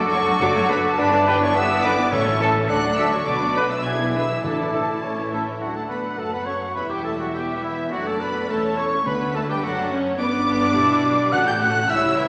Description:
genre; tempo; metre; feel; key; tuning
quick classical-period movement for symphony orchestra; 105 BPM; 2/4; straight; D major; A4 = 440 Hz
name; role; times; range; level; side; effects
clear oboe; second line; 0.0-12.3 s; E4 to G5; -29 LUFS; equal; none
rich studio violin section; second line; 0.0-12.3 s; B3 to F#5; -33 LUFS; equal; none
warm clarinet; second line; 0.0-12.3 s; E4 to G5; -31 LUFS; equal; none
warm bassoon; accompaniment; 0.0-5.3 s; B3 to F#4; -26 LUFS; equal; none
warm studio viola section; accompaniment; 0.0-12.3 s; D3 to F#4; -30 LUFS; equal; none
mellow French horn section; sustained chords; 0.0-12.3 s; E3 to G4; -32 LUFS; equal; none
mellow trumpet; stabs; 0.0-5.4 s; A4 to B4; -30 LUFS; equal; none
warm studio cello section; bass; 0.0-12.3 s; D2 to D3; -36 LUFS; equal; none
rich studio violin section; melody; 0.1-12.3 s; E5 to G#6; -32 LUFS; equal; none
concert flute; second line; 0.1-12.3 s; G4 to G6; -31 LUFS; equal; none
rich studio double bass section; bass; 0.1-12.3 s; E1 to D2; -34 LUFS; equal; none
timpani; percussion; 2.1-5.0, 9.1-12.1 s; A2 to D3; -37 LUFS; equal; none
room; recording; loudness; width
wet scoring stage reverb, RT60 1.8 s; none; -21 LUFS; mono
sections
0.0-5.6 A section; 5.6-12.3 B section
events
none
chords
0.0 D/F#; 1.0 Em7/G; 2.1 A; 2.7 D; 3.3 Bm; 3.8 E7/B; 4.4 Asus4; 5.0 A; 5.6 D; 6.8 Gmaj13/E; 7.9 D/F#; 9.1 D; 10.2 G; 11.3 A7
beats
0.41 | 0.98 1.55 | 2.12 2.69 | 3.27 3.85 | 4.44 5.03 | 5.62 6.20 | 6.77 7.35 | 7.93 8.50 | 9.07 9.63 | 10.20 10.76 | 11.33 11.90

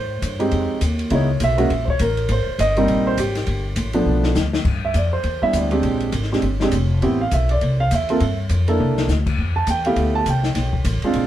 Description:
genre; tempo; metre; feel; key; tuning
jazz piano trio; 203 BPM; 4/4; swing 60% on 8ths; C major from 4.7 s; A4 = 440 Hz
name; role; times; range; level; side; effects
warm concert grand piano; melody; 0.0-11.3 s; F3 to A5; -20 LUFS; right 2 dB; none
upright bass; bass; 0.0-11.3 s; F1 to Ab2; -21 LUFS; equal; none
open jazz drum kit; drums; 0.2-11.2 s; crash cymbal, hi-hat, kick drum, ride cymbal, snare drum, toms; -26 LUFS; left 2 dB; none
room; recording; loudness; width
moderate club reverb, RT60 0.6 s; heard from further back in the room; -17 LUFS; side -12 dB against mid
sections
0.0-4.7 A section; 4.7-11.3 A section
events
grand piano solo 0.0-11.3; drum fill 4.1-4.7, 8.8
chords
0.0 Abmaj7; 0.5 Fm7; 1.1 Dbm7; 1.7 Bbmaj7(no3); 2.3 Abmaj9; 3.5 G9; 4.7 Cmaj9; 5.8 Bb13; 7.0 Am; 8.2 G7(no3); 8.8 C13; 9.4 Fmaj9#11; 10.6 B7(no3)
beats
0.22 0.52 0.81 | 1.11 1.40 1.70 1.99 | 2.29 2.58 2.88 3.17 | 3.47 3.77 4.06 4.36 | 4.65 4.95 5.24 5.54 | 5.83 6.13 6.42 6.72 | 7.02 7.31 7.61 7.90 | 8.20 8.49 8.79 9.08 | 9.38 9.67 9.97 10.27 | 10.56 10.86 11.15

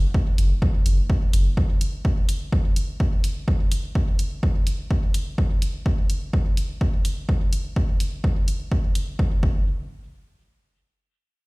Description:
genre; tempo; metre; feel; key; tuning
dub techno; 126 BPM; 4/4; straight; unclear; A4 = 440 Hz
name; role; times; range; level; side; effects
round analog bass; bass; 0.0-1.5 s; F#1; -18 LUFS; equal; sidechain pumping
electronic kick drum; drums; 0.1-9.6 s; none; -21 LUFS; equal; overdrive, studio reverb
electronic hi-hat; drums; 0.4-9.0 s; none; -34 LUFS; equal; overdrive, studio reverb
room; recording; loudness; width
digital ambience; played on a big sound system in a bare room, stone room reverb; -20 LUFS; side -26 dB against mid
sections
0.0-9.2 A section; 9.2-11.5 B section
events
none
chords
none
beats
0.14 0.62 1.10 | 1.57 2.05 2.52 3.00 | 3.48 3.95 4.43 4.91 | 5.38 5.86 6.33 6.81 | 7.29 7.76 8.24 8.71 | 9.19

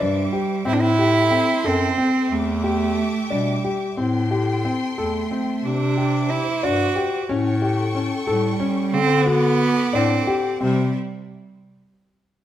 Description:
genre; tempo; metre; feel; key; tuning
contemporary instrumental, chamber music in an uneven meter; 181 BPM (eighths); 5/8; straight; C lydian; A4 = 436 Hz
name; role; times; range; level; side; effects
warm cello; melody; 0.0-10.9 s; G3 to F#4; -22 LUFS; right 5 dB; none
clear studio string section; sustained chords; 0.0-10.9 s; G4 to D6; -31 LUFS; left 2 dB; none
dark grand piano; arpeggios; 0.0-10.9 s; C4 to A4; -24 LUFS; left 3 dB; none
mellow bass clarinet; bass; 0.0-10.9 s; E2 to D3; -23 LUFS; left 2 dB; none
room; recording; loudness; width
moderate recital hall reverb, RT60 1.5 s; none; -18 LUFS; side -12 dB against mid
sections
0.0-10.6 A section; 10.6-12.3 B section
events
none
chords
0.0 Cadd9; 0.7 Am7; 2.3 Em7; 4.0 Am7; 5.6 Cadd9; 7.3 A7; 8.9 D; 10.6 Cadd9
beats
0.00 0.33 | 0.66 0.98 1.32 1.65 1.98 | 2.31 2.64 2.97 3.31 3.64 | 3.98 4.31 4.65 4.98 5.31 | 5.64 5.98 6.31 6.64 6.97 | 7.29 7.62 7.95 8.28 8.61 | 8.94 9.27 9.60 9.94 10.28 | 10.62

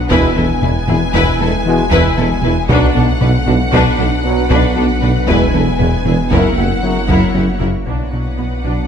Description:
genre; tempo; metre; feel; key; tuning
cinematic, hybrid orchestral and electronic film score; 116 BPM; 5/4; straight; B dorian; A4 = 440 Hz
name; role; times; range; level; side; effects
rich symphonic violin section; melody; 0.0-8.9 s; F#5 to G#5; -23 LUFS; left 3 dB; none
organ-like drone; sustained chords; 0.0-8.9 s; F#3 to D5; -23 LUFS; equal; ensemble chorus, built-in reverb
warm sub bass; bass; 0.0-8.9 s; E1 to B1; -22 LUFS; equal; none
rich symphonic violin section; second line; 0.1-8.9 s; F#4 to B4; -22 LUFS; left 3 dB; none
warm studio viola section; accompaniment; 0.1-8.9 s; F#3 to E4; -21 LUFS; right 1 dB; none
bright trombone section; sustained chords; 0.1-7.0 s; B2 to G#3; -24 LUFS; right 4 dB; none
mellow French horn section; sustained chords; 0.1-7.0 s; A#3 to E4; -24 LUFS; left 5 dB; none
thumb-piano-like synth pluck; arpeggios; 0.1-8.8 s; E3 to B4; -26 LUFS; right 4 dB; none
round analog bass; riff; 0.1-8.8 s; E2 to B3; -20 LUFS; left 3 dB; none
dark chamber double bass section; bass; 0.1-8.7 s; E1 to B1; -22 LUFS; right 4 dB; none
warm symphonic cello section; bass; 0.1-8.7 s; E2 to B2; -22 LUFS; right 1 dB; none
warm tuba; bass; 0.1-7.7 s; E1 to B1; -22 LUFS; right 4 dB; none
taiko ensemble; drums; 0.1-8.9 s; none; -21 LUFS; left 1 dB; none
room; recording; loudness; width
moderate scoring stage reverb, RT60 1.8 s; none; -11 LUFS; side -7 dB against mid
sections
0.0-7.9 A section; 7.9-8.9 B section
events
none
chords
0.1 E; 2.7 Bm; 5.3 E; 6.3 F#7; 7.9 Bm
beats
| 0.11 0.63 1.14 1.66 2.18 | 2.69 3.21 3.73 4.25 4.76 | 5.28 5.80 6.32 6.83 7.35 | 7.87 8.38

